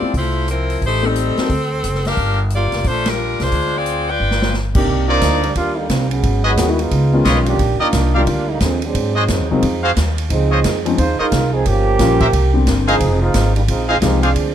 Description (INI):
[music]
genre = jazz, big band swing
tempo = 177 BPM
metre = 4/4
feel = swing 64% on 8ths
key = G minor, C minor from 4.9 s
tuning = A4 = 439 Hz
[part]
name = edgy saxophone section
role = melody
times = 0.0-4.6 s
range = F3 to G5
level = -19 LUFS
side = left 2 dB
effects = none
[part]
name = dark grand piano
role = accompaniment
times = 0.0-1.5, 4.8-14.2 s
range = C3 to A4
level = -20 LUFS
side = left 4 dB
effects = none
[part]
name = upright bass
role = bass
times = 0.0-14.5 s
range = F1 to Ab2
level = -18 LUFS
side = equal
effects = none
[part]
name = swinging big-band drum kit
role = drums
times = 0.1-14.5 s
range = crash cymbal, hi-hat, kick drum, ride cymbal, rim click, snare drum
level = -23 LUFS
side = equal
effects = none
[part]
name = dark trombone section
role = second line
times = 4.8-14.5 s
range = D3 to C5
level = -19 LUFS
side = right 3 dB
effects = none
[part]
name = clear trumpet section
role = stabs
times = 5.1-14.3 s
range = Eb4 to F5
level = -20 LUFS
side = equal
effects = none
[sound]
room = light reverb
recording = none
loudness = -14 LUFS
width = side -10 dB against mid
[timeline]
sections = 0.0-4.9 A section; 4.9-14.5 B section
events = band accent 3.0; drum fill 4.2-4.5; trombone section solo 4.9-14.5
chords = 0.0 Fmaj7; 0.8 Am7b5; 1.5 D7; 2.2 Gm7; 3.5 Dm7b5; 4.2 G7; 4.9 Cm9; 6.2 Abm7; 6.9 Db9; 7.6 Ebmaj7; 8.9 Ab7; 10.3 Dbmaj9; 11.7 Gm7b5; 12.3 C5; 13.0 Fm7